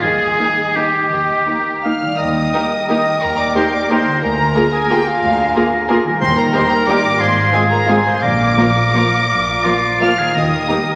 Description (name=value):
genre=classical, orchestral ballroom waltz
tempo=158-195 BPM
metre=3/4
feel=rubato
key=Eb major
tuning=A4 = 442 Hz
part: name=warm studio violin section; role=melody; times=0.0-11.0 s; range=Bb4 to F6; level=-22 LUFS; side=equal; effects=none
part: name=bright oboe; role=second line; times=0.0-11.0 s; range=F4 to Bb4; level=-21 LUFS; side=equal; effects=none
part: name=warm studio violin section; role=second line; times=0.0-10.8 s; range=Eb4 to Bb4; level=-28 LUFS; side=equal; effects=none
part: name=concert harp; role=arpeggios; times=0.0-11.0 s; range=Ab2 to Bb4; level=-30 LUFS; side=equal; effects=none
part: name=warm studio cello section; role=bass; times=0.0-10.6 s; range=D2 to Eb3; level=-28 LUFS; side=equal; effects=none
part: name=warm studio double bass section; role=bass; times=0.0-10.6 s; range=Ab1 to Eb2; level=-29 LUFS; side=equal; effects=none
part: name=dark studio viola section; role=accompaniment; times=0.4-10.8 s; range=F3 to F4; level=-24 LUFS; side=equal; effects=none
part: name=mellow clarinet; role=second line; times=1.8-11.0 s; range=F4 to F5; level=-25 LUFS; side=equal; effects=none
part: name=mellow hollow silver concert flute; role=second line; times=2.2-11.0 s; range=F5 to Ab5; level=-27 LUFS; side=equal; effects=none
part: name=mellow French horn section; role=sustained chords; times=2.5-10.8 s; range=Ab3 to Ab4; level=-26 LUFS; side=equal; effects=none
part: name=timpani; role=percussion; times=6.2-10.8 s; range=Bb2 to Eb3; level=-28 LUFS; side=equal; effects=none
room=wet concert hall reverb, RT60 1.9 s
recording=none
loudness=-15 LUFS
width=mono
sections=0.0-2.2 A section; 2.2-11.0 A section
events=none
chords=0.0 Eb; 4.2 Bb7/D; 6.2 Eb; 7.2 Fm/Ab; 8.2 Bb; 10.4 Eb